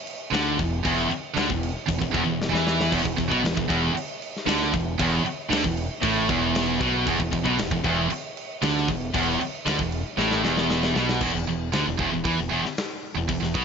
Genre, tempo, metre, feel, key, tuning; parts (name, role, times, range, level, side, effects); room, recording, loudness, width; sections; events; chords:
heavy metal; 116 BPM; 4/4; straight; A4 = 440 Hz
tight metal drum kit; drums; 0.1-13.6 s; crash cymbal, hi-hat, kick drum, snare drum; -29 LUFS; left 1 dB
crunchy overdriven guitar; riff; 0.3-11.2 s; E2 to E3; -29 LUFS; left 1 dB
scooped high-gain guitar; riff; 0.3-13.6 s; E2 to E3; -28 LUFS; left 11 dB; distortion
scooped high-gain guitar; riff; 0.3-13.6 s; E2 to E3; -26 LUFS; right 9 dB; distortion
growling fingered electric bass; bass; 0.3-13.6 s; E1 to E2; -31 LUFS; left 1 dB; overdrive
little or no reverb; nothing above 7.6 kHz; -22 LUFS; side -6 dB against mid
0.0-11.2 A section; 11.2-13.6 B section
drum fill 2.4-2.9, 10.2-11.2
0.0 E5; 11.2 N.C.